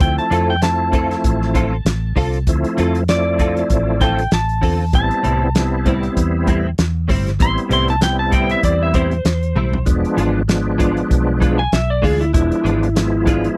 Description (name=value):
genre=straight-eighth soul blues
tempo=97 BPM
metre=4/4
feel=swing 56% on 16ths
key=A minor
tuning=A4 = 440 Hz
part: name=electric slide guitar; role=second line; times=0.0-13.6 s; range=E4 to C6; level=-23 LUFS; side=equal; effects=none
part: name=bright tonewheel organ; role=accompaniment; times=0.0-13.6 s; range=F3 to E4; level=-23 LUFS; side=equal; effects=slow rotary speaker, chorus vibrato
part: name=vintage muted fingered electric bass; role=bass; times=0.0-13.5 s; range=E1 to F2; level=-22 LUFS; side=equal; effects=none
part: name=warm soul drum kit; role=drums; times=0.0-13.6 s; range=hi-hat, kick drum, snare drum, toms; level=-21 LUFS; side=equal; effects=none
part: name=direct-recorded clean electric guitar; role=stabs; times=0.3-13.5 s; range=A2 to A4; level=-24 LUFS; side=equal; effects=ensemble chorus
room=little or no reverb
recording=none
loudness=-17 LUFS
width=mono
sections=0.0-13.6 A section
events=electric slide guitar solo 0.0-13.6; drum fill 9.6-9.9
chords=0.0 Dm7; 4.9 Am7; 9.9 E7b9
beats=| 0.01 0.62 1.24 1.86 | 2.47 3.09 3.71 4.33 | 4.94 5.56 6.18 6.79 | 7.41 8.03 8.64 9.26 | 9.88 10.49 11.11 11.73 | 12.34 12.96